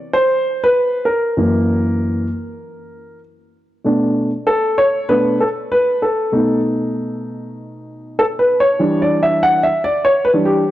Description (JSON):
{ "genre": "hip hop", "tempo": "97 BPM", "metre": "4/4", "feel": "swing 63% on 16ths", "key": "unclear", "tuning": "A4 = 440 Hz", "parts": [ { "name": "dark concert grand piano", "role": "solo", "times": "0.1-10.7 s", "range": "F#2 to F#5", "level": "-14 LUFS", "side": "equal", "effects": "none" } ], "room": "light reverb, small room ambience", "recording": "dry, gritty hardware recording", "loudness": "-14 LUFS", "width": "side -14 dB against mid", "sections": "0.0-3.8 A section; 3.8-10.7 B section", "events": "grand piano solo 0.0-3.8, 3.8-10.7", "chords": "0.0 Cmaj7(no3); 1.4 F#7; 3.8 Bm7; 6.3 B7; 8.8 Em7", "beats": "0.14 0.76 | 1.38 1.99 2.61 3.23 | 3.85 4.47 5.09 5.71 | 6.32 6.94 7.56 8.18 | 8.80 9.42 10.04 10.65" }